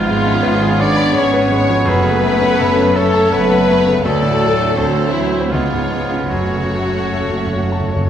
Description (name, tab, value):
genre	classical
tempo	73-84 BPM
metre	3/4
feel	rubato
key	F# minor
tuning	A4 = 441 Hz
part	clear concert grand piano	melody	0.0-8.1 s	C#2 to B5	-19 LUFS	left 1 dB	none
part	dark clarinet	second line	0.0-8.1 s	E4 to D5	-24 LUFS	left 3 dB	none
part	dark symphonic violin section	second line	0.0-8.1 s	E4 to D5	-21 LUFS	left 2 dB	none
part	mellow concert flute	second line	0.0-8.1 s	C5 to D5	-29 LUFS	left 1 dB	none
part	warm oboe	second line	0.0-8.1 s	E4 to D5	-24 LUFS	equal	none
part	mellow bassoon	accompaniment	0.0-8.1 s	F#3 to B3	-24 LUFS	right 3 dB	none
part	dark French horn section	sustained chords	0.0-8.1 s	E3 to D4	-22 LUFS	left 3 dB	none
part	warm symphonic cello section	bass	0.0-8.1 s	C#2 to G#2	-23 LUFS	right 2 dB	none
part	warm symphonic double bass section	bass	0.0-8.1 s	F#1 to D2	-26 LUFS	right 3 dB	none
part	rich studio violin section	melody	0.1-8.1 s	C5 to D5	-29 LUFS	left 4 dB	none
part	warm chamber viola section	accompaniment	0.1-8.1 s	A3 to A4	-24 LUFS	right 3 dB	none
part	timpani	percussion	1.9-2.9, 6.3-8.1 s	F#2	-24 LUFS	equal	none
room	wet scoring stage reverb, RT60 1.5 s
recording	none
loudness	-13 LUFS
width	side -9 dB against mid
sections	0.0-8.1 A section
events	timpani fill 6.3-8.1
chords	0.0 C#7/G#; 1.9 F#m; 4.0 D; 4.8 D7; 5.5 C#7; 6.3 F#m